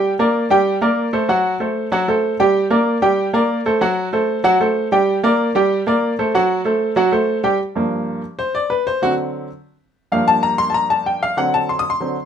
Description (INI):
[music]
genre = latin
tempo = 190 BPM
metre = 4/4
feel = straight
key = G minor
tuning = A4 = 440 Hz
[part]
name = clear baby grand piano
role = solo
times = 0.0-12.3 s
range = G2 to Eb6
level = -15 LUFS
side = equal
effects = none
[sound]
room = moderate studio reverb, RT60 0.6 s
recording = minimal, uncompressed stereo recording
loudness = -15 LUFS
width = side -8 dB against mid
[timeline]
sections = 0.0-7.6 A section; 7.6-12.3 B section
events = grand piano solo 7.6-12.3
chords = 0.0 Gm; 1.3 F#dim; 2.5 Gm; 3.8 F#dim; 5.1 Gm; 6.3 F#dim; 7.6 Gm7; 8.9 D7; 10.1 Gm7; 11.4 D7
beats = | 0.03 0.34 0.66 0.97 | 1.29 1.60 1.92 2.23 | 2.55 2.86 3.18 3.49 | 3.81 4.12 4.44 4.75 | 5.07 5.39 5.70 6.02 | 6.33 6.65 6.96 7.28 | 7.59 7.91 8.22 8.54 | 8.86 9.17 9.49 9.80 | 10.12 10.44 10.75 11.07 | 11.38 11.70 12.01